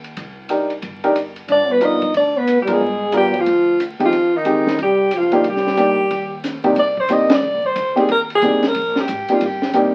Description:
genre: jazz, small-group swing and bop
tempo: 182 BPM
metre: 4/4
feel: swing 63% on 8ths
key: C minor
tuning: A4 = 439 Hz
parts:
  - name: upright bass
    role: bass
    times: 0.0-9.9 s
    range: G1 to F2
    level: -37 LUFS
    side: equal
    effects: none
  - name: compact cocktail drum kit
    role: drums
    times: 0.0-9.8 s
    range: hi-hat, kick drum, ride cymbal, snare drum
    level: -28 LUFS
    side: equal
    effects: none
  - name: warm baby grand piano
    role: accompaniment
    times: 0.5-9.9 s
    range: C3 to Bb4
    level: -20 LUFS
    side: equal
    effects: none
  - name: warm alto saxophone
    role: melody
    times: 1.5-9.9 s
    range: Eb4 to Eb5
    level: -20 LUFS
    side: equal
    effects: none
  - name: breathy trombone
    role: second line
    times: 1.5-6.4 s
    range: Eb3 to Eb4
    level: -22 LUFS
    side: equal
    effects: none
room: moderate studio reverb, RT60 0.5 s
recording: very old 78 rpm record, vinyl crackle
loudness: -17 LUFS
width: mono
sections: 0.0-6.8 A section; 6.8-9.9 A section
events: band accent 2.6, 7.3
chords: 0.0 Cm9; 1.5 G7#9; 4.1 Fm9; 5.5 Cm9

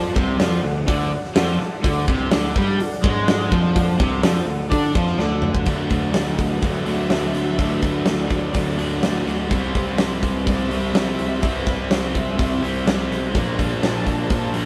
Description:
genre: classic rock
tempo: 125 BPM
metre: 4/4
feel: straight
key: D mixolydian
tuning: A4 = 439 Hz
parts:
  - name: warm upright piano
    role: accompaniment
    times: 0.0-5.6, 13.3-14.7 s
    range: F4 to A5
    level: -32 LUFS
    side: equal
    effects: none
  - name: soft string machine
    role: sustained chords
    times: 0.0-14.7 s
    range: D4 to Bb5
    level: -36 LUFS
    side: equal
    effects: none
  - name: crunchy overdriven guitar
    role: riff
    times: 0.0-5.7 s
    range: C3 to D4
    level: -32 LUFS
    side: equal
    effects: phaser
  - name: distorted electric guitar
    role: riff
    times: 0.0-14.7 s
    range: Bb2 to E4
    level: -30 LUFS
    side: equal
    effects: distortion
  - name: overdriven semi-hollow guitar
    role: riff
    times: 0.0-14.7 s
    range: Bb2 to E4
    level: -27 LUFS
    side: equal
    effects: none
  - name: fuzz picked electric bass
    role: bass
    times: 0.0-14.7 s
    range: Bb1 to D3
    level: -28 LUFS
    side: equal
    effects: overdrive
  - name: huge arena drum kit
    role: drums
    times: 0.2-14.7 s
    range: hi-hat, kick drum, snare drum, toms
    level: -25 LUFS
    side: equal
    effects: none
room: moderate stone room reverb, RT60 1.0 s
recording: band playing live in one room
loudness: -21 LUFS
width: mono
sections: 0.0-5.7 A section; 5.7-14.7 B section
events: upright piano fill 0.9-1.8; drum fill 5.2-5.7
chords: 0.0 D; 9.5 C; 13.3 Bb

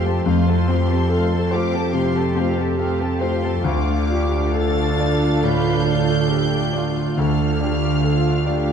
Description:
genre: cinematic, emotional film score for orchestra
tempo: 70 BPM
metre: 4/4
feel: rubato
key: unclear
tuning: A4 = 440 Hz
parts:
  - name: warm studio violin section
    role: melody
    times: 0.0-8.7 s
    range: C6 to A6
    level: -31 LUFS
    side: left 2 dB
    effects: none
  - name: dark studio violin section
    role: second line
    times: 0.0-8.7 s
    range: A4 to A5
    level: -28 LUFS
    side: left 3 dB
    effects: none
  - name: clear concert grand piano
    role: accompaniment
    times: 0.0-8.7 s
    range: D2 to D5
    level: -22 LUFS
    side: left 2 dB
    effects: none
  - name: dark studio viola section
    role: accompaniment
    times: 0.0-8.7 s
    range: A3 to A4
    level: -26 LUFS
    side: right 1 dB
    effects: none
  - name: concert harp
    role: arpeggios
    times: 0.0-8.7 s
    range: D3 to F5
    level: -27 LUFS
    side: left 4 dB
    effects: none
  - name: dark studio cello section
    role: bass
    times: 0.0-8.7 s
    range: F4 to B4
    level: -28 LUFS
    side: right 4 dB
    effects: none
  - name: dark studio double bass section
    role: bass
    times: 0.0-8.7 s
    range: D2 to F2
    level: -22 LUFS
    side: right 4 dB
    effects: none
room: moderate scoring stage reverb, RT60 2.0 s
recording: dark, warm production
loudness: -17 LUFS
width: side -7 dB against mid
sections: 0.0-8.7 A section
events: none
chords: 0.0 F; 3.6 Dm

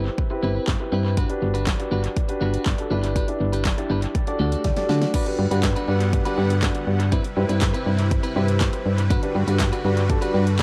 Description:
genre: dance-pop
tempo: 121 BPM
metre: 4/4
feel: straight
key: G major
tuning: A4 = 437 Hz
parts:
  - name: dark grand piano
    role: accompaniment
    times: 0.0-10.6 s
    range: C4 to D5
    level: -29 LUFS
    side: equal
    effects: tape echo
  - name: clean electric guitar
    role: riff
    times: 0.0-10.6 s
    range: A3 to B4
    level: -33 LUFS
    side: equal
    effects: subtle chorus
  - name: solid FM bass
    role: bass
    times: 0.0-10.6 s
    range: G1 to D3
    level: -24 LUFS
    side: equal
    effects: sidechain pumping
  - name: pop drum kit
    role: drums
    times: 0.2-10.6 s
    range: crash cymbal, handclaps, hi-hat, kick drum, snare drum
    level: -27 LUFS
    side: equal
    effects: tape echo
  - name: swell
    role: sound effects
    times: 4.2-5.1 s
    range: none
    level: -38 LUFS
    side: equal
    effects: none
  - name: supersaw chords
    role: sustained chords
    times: 5.1-10.6 s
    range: C3 to F#5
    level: -33 LUFS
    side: equal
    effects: sidechain pumping
  - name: group handclap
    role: percussion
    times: 5.6-10.6 s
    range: none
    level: barely audible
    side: none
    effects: none
room: light reverb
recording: echo-heavy mix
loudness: -22 LUFS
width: mono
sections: 0.0-5.1 A section; 5.1-10.6 B section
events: drum fill 4.6-5.1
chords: 0.0 Cmaj7/G; 1.2 Gmaj7; 2.9 Em7/G; 4.1 D; 5.1 Gmaj7; 7.1 Cmaj7/G; 9.1 Gmaj7

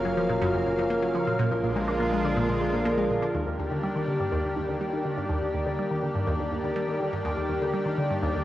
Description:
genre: ambient, sequencer-driven space music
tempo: 123 BPM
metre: 4/4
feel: straight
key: unclear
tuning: A4 = 438 Hz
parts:
  - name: lush unison pad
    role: sustained chords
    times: 0.0-8.4 s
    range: C#3 to E#5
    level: -29 LUFS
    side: equal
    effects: chorus, cassette tape
  - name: vibraphone with medium mallets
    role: arpeggios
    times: 0.0-3.4 s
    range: E#4 to E#5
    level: -28 LUFS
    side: equal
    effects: auto-pan, cassette tape, ping-pong delay
  - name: resonant blip pluck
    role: riff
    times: 0.0-8.4 s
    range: Eb2 to D4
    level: -28 LUFS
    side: equal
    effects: phaser, cassette tape, ping-pong delay
  - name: warm sub bass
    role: bass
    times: 0.0-3.3 s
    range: F#1 to A#1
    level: -38 LUFS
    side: equal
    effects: tube saturation
  - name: bubbling stepped-filter texture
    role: texture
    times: 0.0-8.4 s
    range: G4 to A#4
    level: -36 LUFS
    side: left 2 dB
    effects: chorus, built-in reverb, cassette tape
room: wet spring reverb, RT60 1.3 s, digital ambience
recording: home recording on cassette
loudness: -24 LUFS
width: side -14 dB against mid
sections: 0.0-3.3 A section; 3.3-8.4 B section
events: none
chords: 0.0 F#maj7; 1.4 A#7; 3.3 Ebmaj7

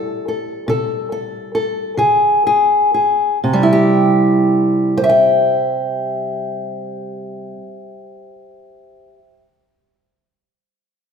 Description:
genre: acoustic country blues, solo or duo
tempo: 39-50 BPM (dotted quarters)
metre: 12/8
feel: straight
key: C major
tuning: A4 = 439 Hz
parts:
  - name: fingerpicked old ladder-braced acoustic guitar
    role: solo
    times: 0.0-9.2 s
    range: C3 to G5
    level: -14 LUFS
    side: equal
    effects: none
room: wet recital hall reverb, RT60 1.6 s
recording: recorded in a church or concert hall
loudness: -13 LUFS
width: side -6 dB against mid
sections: 0.0-3.4 A section; 3.4-9.6 B section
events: slowing down 0.0-3.4; stop 0.0-2.0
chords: 0.0 C6; 2.0 Db5; 3.4 C

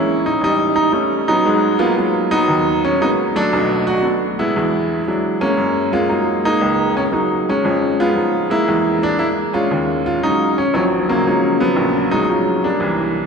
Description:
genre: solo jazz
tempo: 116 BPM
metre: 4/4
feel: swing 66% on 8ths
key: Eb minor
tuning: A4 = 440 Hz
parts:
  - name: bright upright piano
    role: solo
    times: 0.0-13.3 s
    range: A1 to F#4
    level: -14 LUFS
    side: equal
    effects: none
room: wet cathedral reverb, RT60 4.0 s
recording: recorded in a church or concert hall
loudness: -14 LUFS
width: side -5 dB against mid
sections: 0.0-13.3 A section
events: none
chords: 0.4 A7#11; 1.4 Abm9; 3.5 Bm7; 4.5 E9; 5.6 Gb69; 7.6 Fm7b5; 8.7 E7#11; 9.7 Ebm11

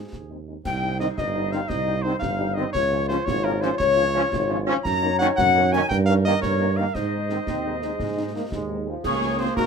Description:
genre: military-style march for wind band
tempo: 114 BPM (dotted quarters)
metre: 6/8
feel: straight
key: unclear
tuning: A4 = 437 Hz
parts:
  - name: warm cornet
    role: melody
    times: 0.0-9.7 s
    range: Ab4 to Bb5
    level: -27 LUFS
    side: equal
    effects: none
  - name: dark woodwind section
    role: second line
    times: 0.0-9.7 s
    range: Eb4 to Db5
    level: -30 LUFS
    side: left 2 dB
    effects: none
  - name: mellow tuba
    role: bass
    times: 0.0-9.7 s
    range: G1 to Ab2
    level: -26 LUFS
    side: right 3 dB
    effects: none
  - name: concert snare drum, concert bass drum and clash cymbals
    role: drums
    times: 0.1-9.7 s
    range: none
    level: -34 LUFS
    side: equal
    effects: none
  - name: dark French horn section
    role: accompaniment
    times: 0.3-9.5 s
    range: F3 to F4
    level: -31 LUFS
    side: left 2 dB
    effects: none
  - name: flute section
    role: second line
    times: 0.7-9.7 s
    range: Bb4 to Db6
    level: -28 LUFS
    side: left 6 dB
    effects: none
  - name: clear trombone section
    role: sustained chords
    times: 1.0-9.7 s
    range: Eb3 to Db4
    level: -28 LUFS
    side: right 2 dB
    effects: none
  - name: mellow euphonium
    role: second line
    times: 9.0-9.7 s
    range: Bb3 to Db4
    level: -30 LUFS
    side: right 2 dB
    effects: none
room: moderate small room reverb, RT60 0.5 s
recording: minimal, uncompressed stereo recording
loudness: -20 LUFS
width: side -6 dB against mid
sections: 0.7-9.0 A section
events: none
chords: 0.0 Ab; 0.7 Cm; 2.8 Db; 4.8 Ebm7/Gb; 5.9 Eb7/G; 6.9 Ab; 9.0 Db

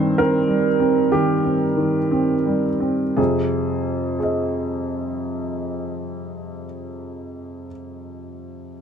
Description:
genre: neoclassical minimalist piano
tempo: 56-67 BPM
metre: 4/4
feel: rubato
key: F minor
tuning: A4 = 444 Hz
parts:
  - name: clear upright piano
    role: solo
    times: 0.0-8.8 s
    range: F2 to Eb5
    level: -20 LUFS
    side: right 1 dB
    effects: none
room: moderate studio reverb, RT60 0.6 s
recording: dark, warm production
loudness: -18 LUFS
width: side -7 dB against mid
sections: 0.0-3.2 A section; 3.2-7.3 B section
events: slowing down 0.0-3.2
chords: 0.0 Cm/G; 3.2 Fm7

